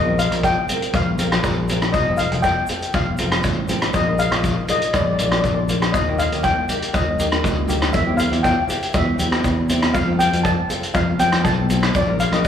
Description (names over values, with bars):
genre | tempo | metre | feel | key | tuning
calypso | 120 BPM | 4/4 | straight | unclear | A4 = 437 Hz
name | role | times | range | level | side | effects
steel pan | melody | 0.0-12.5 s | D5 to A5 | -22 LUFS | left 2 dB | slapback echo
fingered electric bass | bass | 0.0-12.5 s | F1 to F2 | -21 LUFS | left 1 dB | none
nylon-string guitar | accompaniment | 0.1-12.5 s | Bb3 to Bb4 | -27 LUFS | right 1 dB | slapback echo
street-band drum kit | drums | 0.2-12.5 s | hi-hat, kick drum, rim click | -21 LUFS | equal | none
egg shaker | percussion | 0.2-12.5 s | none | -44 LUFS | left 3 dB | none
room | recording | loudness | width
moderate lush hall reverb, RT60 2.4 s | live gig heard through the venue's PA, club reverb | -17 LUFS | side -8 dB against mid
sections
0.0-12.5 A section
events
none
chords
0.0 Bbsus2; 1.9 F; 3.9 Bbsus4; 4.9 Bb; 5.9 Eb; 7.9 C/E; 9.9 F; 11.9 Bb